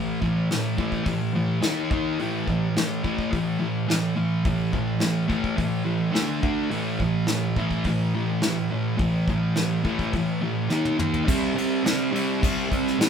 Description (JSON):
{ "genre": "garage rock duo or trio", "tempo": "106 BPM", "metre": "4/4", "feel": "straight", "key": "A minor", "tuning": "A4 = 445 Hz", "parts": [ { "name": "thick fuzz guitar", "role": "riff", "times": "0.0-13.1 s", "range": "A2 to D#4", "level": "-23 LUFS", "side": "equal", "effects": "distortion" }, { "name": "soft brush drum kit", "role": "drums", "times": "0.2-13.1 s", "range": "crash cymbal, hi-hat, kick drum, snare drum, toms", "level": "-27 LUFS", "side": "left 1 dB", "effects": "none" } ], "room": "wet studio ambience, RT60 0.5 s", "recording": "band playing live in one room", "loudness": "-22 LUFS", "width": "side -7 dB against mid", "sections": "0.0-11.3 A section; 11.3-13.1 B section", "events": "drum fill 10.7-11.3", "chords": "0.0 A5; 1.6 D#5; 2.2 A5; 6.2 D5; 6.7 A5; 10.7 D#5; 11.3 C5", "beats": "0.51 1.07 1.64 | 2.20 2.77 3.33 3.90 | 4.46 5.03 5.59 6.16 | 6.73 7.30 7.87 8.43 | 9.01 9.57 10.15 10.72 | 11.29 11.86 12.43 13.01" }